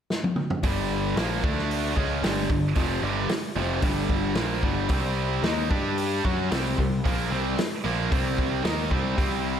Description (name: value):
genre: classic rock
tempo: 112 BPM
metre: 4/4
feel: straight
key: G minor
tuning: A4 = 440 Hz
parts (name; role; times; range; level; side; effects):
- vintage drum kit; drums; 0.1-9.3 s; hi-hat, kick drum, snare drum, toms; -28 LUFS; equal; none
- cranked stack guitar; riff; 0.6-9.6 s; F2 to G4; -30 LUFS; left 9 dB; overdrive, slapback echo
- tight distorted guitar; riff; 0.6-9.6 s; F2 to G4; -28 LUFS; right 8 dB; distortion
- growling picked electric bass; bass; 0.6-9.6 s; F1 to G2; -29 LUFS; equal; overdrive
room: moderate lush hall reverb, RT60 1.6 s, studio reverb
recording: big arena sound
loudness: -23 LUFS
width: side -8 dB against mid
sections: 0.6-9.6 A section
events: drum fill 0.1-0.6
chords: 0.0 N.C.; 0.6 Gm; 1.4 D5; 2.0 Gm; 4.9 C5; 5.7 G5; 6.2 C5